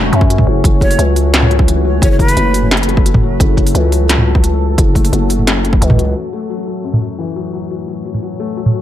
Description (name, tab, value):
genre	half-time drum and bass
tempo	174 BPM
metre	4/4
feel	half-time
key	F# minor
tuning	A4 = 440 Hz
part	deep dark ambient pad	sustained chords	0.0-8.8 s	A3 to C#5	-22 LUFS	equal	chorus, built-in reverb, sidechain pumping
part	felt-muted upright piano	arpeggios	0.0-8.8 s	F#2 to F#4	-21 LUFS	left 6 dB	low-pass filter, ping-pong delay
part	growling 808-style bass	bass	0.0-6.1 s	F#1 to F#2	-14 LUFS	equal	none
part	industrial drum kit	drums	0.1-8.7 s	hi-hat, snare drum, toms	-16 LUFS	right 1 dB	low-pass filter on hats, low-pass filter on toms, low-pass filter on snare, low-pass filter on room
part	electronic kick drum	drums	0.2-6.0 s	none	-12 LUFS	equal	overdrive
part	breathy jazz flute	melody	0.8-2.7 s	B4 to C#5	-21 LUFS	equal	ping-pong delay
room	little or no reverb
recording	none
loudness	-11 LUFS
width	side -12 dB against mid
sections	0.0-6.2 A section; 6.2-8.8 B section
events	drop 0.0-6.2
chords	0.0 F#m